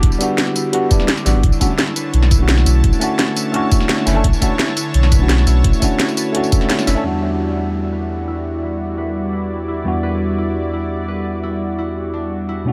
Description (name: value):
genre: liquid drum and bass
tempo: 171 BPM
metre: 4/4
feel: straight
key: E minor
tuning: A4 = 440 Hz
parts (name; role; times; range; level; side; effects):
- tine electric piano; accompaniment; 0.0-12.7 s; E2 to A4; -23 LUFS; equal; phaser, dub echo
- lush unison pad; sustained chords; 0.0-12.7 s; D3 to A5; -27 LUFS; equal; chorus
- concert harp; arpeggios; 0.0-12.7 s; D4 to E5; -28 LUFS; equal; low-pass filter, dub echo
- warm sub bass; bass; 0.0-7.0 s; E1 to B1; -16 LUFS; equal; none
- drum and bass drum kit; drums; 0.0-6.9 s; hi-hat, snare drum, tambourine; -23 LUFS; equal; none
- electronic kick drum; drums; 0.0-6.6 s; none; -18 LUFS; equal; none
room: light reverb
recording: none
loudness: -17 LUFS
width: mono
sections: 0.0-7.0 A section; 7.0-12.7 B section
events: drop 0.0-7.0; band accent 6.7; filter sweep on harp 7.0-12.7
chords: 0.0 Em9; 1.4 Bm9; 7.0 Em9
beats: | 0.03 0.38 0.73 1.08 | 1.44 1.79 2.14 2.49 | 2.84 3.19 3.54 3.89 | 4.24 4.59 4.94 5.29 | 5.64 6.00 6.35 6.70 | 7.05 7.40 7.75 8.10 | 8.45 8.80 9.15 9.51 | 9.86 10.21 10.56 10.91 | 11.26 11.61 11.96 12.31 | 12.66